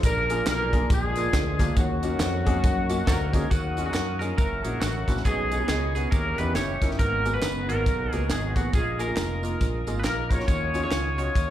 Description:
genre	uptempo gospel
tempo	138 BPM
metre	4/4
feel	swing 60% on 8ths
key	Eb minor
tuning	A4 = 440 Hz
part	dark horn section	melody	0.0-11.5 s	Gb3 to Db5	-29 LUFS	left 2 dB	plate reverb, slapback echo
part	warm grand piano	accompaniment	0.0-11.3 s	Ab2 to Cb5	-33 LUFS	equal	plate reverb, slapback echo
part	tonewheel organ	sustained chords	0.0-11.5 s	F3 to Eb6	-36 LUFS	right 4 dB	fast rotary speaker, plate reverb
part	fingered electric bass	bass	0.0-11.5 s	F1 to Gb2	-29 LUFS	equal	none
part	tight funk drum kit	drums	0.0-11.5 s	hi-hat, kick drum, snare drum	-25 LUFS	equal	none
part	tambourine and handclaps	percussion	0.0-11.5 s	none	-40 LUFS	right 4 dB	slapback echo
part	twangy electric guitar	melody	3.1-11.5 s	Gb4 to Db5	-34 LUFS	right 2 dB	spring reverb, plate reverb, slapback echo
part	mellow French horn section	sustained chords	3.5-11.5 s	Eb3 to Fb4	-42 LUFS	right 4 dB	none
room	light reverb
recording	live gig heard through the venue's PA, club reverb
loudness	-22 LUFS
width	side -12 dB against mid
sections	0.0-3.5 A section; 3.5-11.5 B section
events	none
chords	0.0 Bb7; 1.8 Ebm7; 3.5 Ebm9; 4.4 Gb7; 5.2 B69; 6.1 Eb7b9; 7.0 Abm9; 8.7 Bb7sus4; 10.5 Ebm9

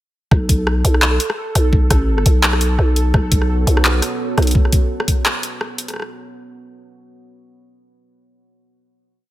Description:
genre	half-time drum and bass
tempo	170 BPM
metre	4/4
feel	swing 56% on 16ths, half-time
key	unclear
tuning	A4 = 441 Hz
part	growling 808-style bass	bass	0.3-4.5 s	A1 to B1	-16 LUFS	equal	none
part	drum and bass drum kit	drums	0.3-6.1 s	handclaps, hi-hat, rim click	-19 LUFS	equal	overdrive
part	electronic kick drum	drums	0.3-5.2 s	none	-15 LUFS	equal	overdrive
part	pulsing gated texture	texture	0.3-4.6 s	A4	-27 LUFS	right 3 dB	chorus, built-in reverb
part	deep dark ambient pad	sustained chords	3.4-4.5 s	B3 to C#5	-28 LUFS	right 4 dB	chorus, built-in reverb, sidechain pumping
room	light reverb, digital ambience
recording	none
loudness	-14 LUFS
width	side -15 dB against mid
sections	0.3-6.0 drop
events	drop 0.3-6.0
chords	0.3 Bsus2

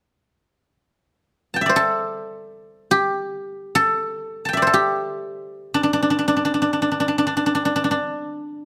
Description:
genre	chinese traditional, Chinese solo plucked strings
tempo	free time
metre	none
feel	none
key	G zhi mode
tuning	A4 = 442 Hz
part	guzheng	solo	1.5-8.7 s	D4 to A5	-22 LUFS	equal	none
room	light reverb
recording	close, detailed microphones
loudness	-21 LUFS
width	mono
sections	1.1-8.7 A section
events	none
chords	none

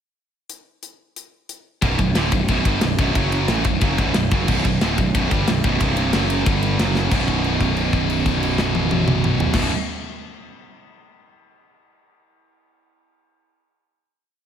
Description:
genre	heavy metal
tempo	182 BPM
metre	4/4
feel	straight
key	B minor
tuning	A4 = 440 Hz
part	tight metal drum kit	drums	0.5-9.6 s	crash cymbal, hi-hat, kick drum, ride cymbal, snare drum, toms	-22 LUFS	left 1 dB	none
part	heavy high-gain guitar	riff	1.8-9.7 s	B1 to A3	-25 LUFS	left 10 dB	distortion, slapback echo
part	high-gain distorted guitar	riff	1.8-9.7 s	B1 to A3	-23 LUFS	right 8 dB	distortion, slapback echo
part	fuzz picked electric bass	bass	1.8-9.7 s	B0 to A1	-24 LUFS	left 1 dB	overdrive
room	moderate lush hall reverb, RT60 2.3 s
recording	big arena sound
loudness	-17 LUFS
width	side -8 dB against mid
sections	0.5-1.8 pickup bar; 1.8-7.1 riff; 7.1-9.7 final chord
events	drum fill 7.0; held note 7.1-9.5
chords	0.5 N.C.; 1.8 Bm; 3.2 F#5; 3.5 Bm; 5.8 C5; 6.1 F#5; 6.5 G5; 6.8 F#5; 7.1 B5

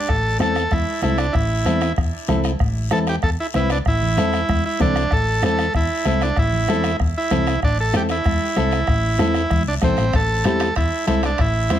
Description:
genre	latin, cumbia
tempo	191 BPM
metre	4/4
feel	straight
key	A minor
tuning	A4 = 440 Hz
part	combo organ	melody	0.0-11.8 s	C4 to A4	-22 LUFS	right 2 dB	tape echo
part	hollow-body short-scale fingered electric bass	bass	0.1-11.8 s	A1 to E2	-22 LUFS	equal	none
part	bombo	percussion	0.1-11.8 s	none	-23 LUFS	equal	none
part	guiro	percussion	0.1-11.8 s	none	-36 LUFS	left 8 dB	none
part	nylon-string guitar	accompaniment	0.4-11.8 s	C4 to C5	-23 LUFS	left 4 dB	none
part	congas	percussion	0.4-11.8 s	none	-26 LUFS	right 1 dB	none
part	timbales	percussion	10.1-11.8 s	none	-34 LUFS	right 4 dB	none
room	light reverb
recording	none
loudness	-17 LUFS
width	side -11 dB against mid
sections	0.1-11.8 A section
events	none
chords	0.1 Am

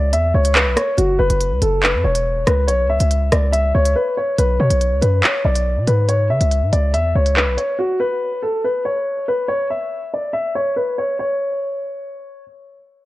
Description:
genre	hip hop, drill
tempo	141 BPM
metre	4/4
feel	half-time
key	C# phrygian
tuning	A4 = 440 Hz
part	dark baby grand piano	melody	0.0-12.4 s	F#4 to E5	-19 LUFS	left 1 dB	digital delay
part	hard-hitting 808-style bass	bass	0.0-7.6 s	E1 to C#3	-17 LUFS	equal	none
part	drill drum kit	drums	0.1-7.7 s	handclaps, hi-hat, rim click	-19 LUFS	right 1 dB	none
room	light reverb, digital ambience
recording	worn, warbling old tape, cassette tape, warbly pitch drift, low-pass filter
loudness	-15 LUFS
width	side -17 dB against mid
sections	0.0-4.4 A section; 4.4-11.2 B section; 11.2-13.1 C section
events	break 4.0-4.4; filter sweep 4.4-11.2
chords	0.0 C#m; 1.0 F#5; 2.7 C#m; 4.4 Bm; 6.1 C#m; 7.8 N.C.

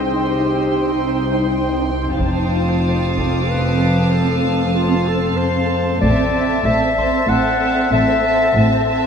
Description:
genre	cinematic, suspense film score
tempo	94 BPM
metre	3/4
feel	straight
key	unclear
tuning	A4 = 440 Hz
part	warm studio violin section	melody	0.0-9.1 s	A5 to C6	-28 LUFS	right 2 dB	none
part	rich studio violin section	second line	0.0-9.1 s	E5 to G5	-27 LUFS	equal	none
part	warm clarinet	second line	0.0-8.9 s	Eb4 to F#5	-20 LUFS	left 3 dB	none
part	dark studio viola section	accompaniment	0.0-9.1 s	C4	-24 LUFS	right 4 dB	none
part	flickering grainy texture	sustained chords	0.0-9.1 s	C4 to G5	-23 LUFS	equal	built-in reverb
part	dark studio cello section	bass	0.0-9.1 s	C2 to A2	-23 LUFS	equal	none
part	rich studio double bass section	bass	0.0-9.1 s	F1 to C2	-22 LUFS	equal	none
part	concert harp	texture	0.0-9.1 s	G5 to A6	-36 LUFS	right 3 dB	none
part	warm studio violin section	texture	0.0-9.1 s	D6 to C7	-31 LUFS	equal	none
part	taiko ensemble	drums	2.2-7.3 s	none	-27 LUFS	equal	none
room	wet cathedral reverb, RT60 6.5 s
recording	in a vast, echoing space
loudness	-15 LUFS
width	side -7 dB against mid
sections	0.0-9.1 A section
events	none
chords	0.0 Cm; 2.2 F; 6.0 Am

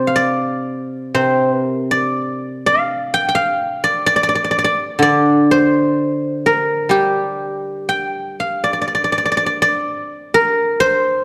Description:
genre	chinese traditional, Chinese solo plucked strings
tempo	62 BPM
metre	2/4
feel	uneven beats, rubato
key	G yu mode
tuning	A4 = 440 Hz
part	guzheng	solo	0.0-11.2 s	C3 to G5	-17 LUFS	equal	none
room	moderate concert hall reverb, RT60 1.9 s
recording	dark, warm production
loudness	-17 LUFS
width	mono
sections	0.0-8.9 A section; 8.9-11.2 B section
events	none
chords	none

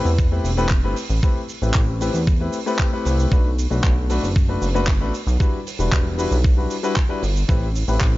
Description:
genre	nu-disco, nu disco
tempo	115 BPM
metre	4/4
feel	straight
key	A dorian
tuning	A4 = 441 Hz
part	dark concert grand piano	accompaniment	0.0-8.2 s	G3 to B4	-25 LUFS	left 3 dB	sidechain pumping, tape echo
part	chorused synth bass	bass	0.1-8.2 s	E1 to E2	-20 LUFS	equal	sidechain pumping
part	damped 70s drum kit	drums	0.1-8.1 s	cabasa, handclaps, hi-hat	-29 LUFS	right 2 dB	none
part	electronic kick drum	drums	0.2-8.1 s	none	-18 LUFS	equal	none
room	studio ambience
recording	nothing above 7.5 kHz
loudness	-17 LUFS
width	side -17 dB against mid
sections	0.0-8.2 A section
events	none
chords	0.0 Am7; 3.3 Bm7; 5.4 Em7; 7.5 Am7

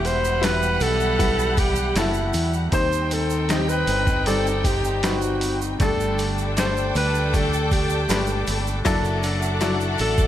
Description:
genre	pop ballad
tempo	78 BPM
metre	4/4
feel	straight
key	G major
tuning	A4 = 440 Hz
part	warm alto saxophone	melody	0.0-10.3 s	E4 to C5	-24 LUFS	equal	none
part	warm studio violin section	second line	0.0-10.3 s	C4 to G5	-29 LUFS	left 2 dB	ping-pong delay
part	bright upright piano	accompaniment	0.0-10.3 s	G2 to F#5	-28 LUFS	left 4 dB	none
part	dark studio string section	sustained chords	0.0-10.3 s	G3 to D6	-32 LUFS	left 2 dB	none
part	fingerpicked steel-string acoustic guitar	arpeggios	0.0-10.3 s	E2 to G4	-33 LUFS	right 6 dB	none
part	fingered electric bass	bass	0.0-10.3 s	E1 to E2	-25 LUFS	equal	none
part	trip hop sampler-style drum kit	drums	0.0-10.3 s	hi-hat, kick drum, snare drum	-25 LUFS	equal	none
part	tube shaker	percussion	0.1-10.3 s	none	-36 LUFS	right 11 dB	none
room	light reverb, studio reverb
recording	none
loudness	-19 LUFS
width	side -11 dB against mid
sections	0.0-10.3 A section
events	none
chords	0.0 Emadd9; 2.7 Cm; 5.8 Gsus2; 8.9 Dadd9/F#

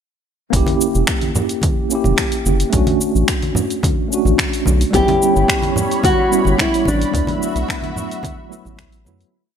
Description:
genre	sunset chillout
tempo	109 BPM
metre	4/4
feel	straight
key	D major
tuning	A4 = 439 Hz
part	mellow tine electric piano	accompaniment	0.5-9.4 s	F#3 to G4	-20 LUFS	right 2 dB	medium stereo tremolo, auto-pan, ping-pong delay
part	round analog bass	bass	0.5-9.2 s	E1 to F#2	-17 LUFS	equal	none
part	deep house drum kit	drums	0.5-9.3 s	finger snaps, hi-hat, shaker	-22 LUFS	equal	overdrive
part	electronic kick drum	drums	0.5-8.9 s	none	-22 LUFS	equal	overdrive
part	congas	percussion	0.7-9.2 s	none	-24 LUFS	right 1 dB	none
part	nylon-string guitar	melody	4.9-9.0 s	D4 to G4	-18 LUFS	left 1 dB	ping-pong delay
part	lush unison pad	sustained chords	4.9-9.3 s	G3 to B5	-25 LUFS	right 2 dB	chorus, phaser
room	light reverb, digital ambience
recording	none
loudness	-14 LUFS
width	side -8 dB against mid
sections	0.5-9.3 chorus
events	fade-out 6.4-9.3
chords	0.5 F#7b9; 2.7 Bm7; 4.9 A9; 7.1 D69

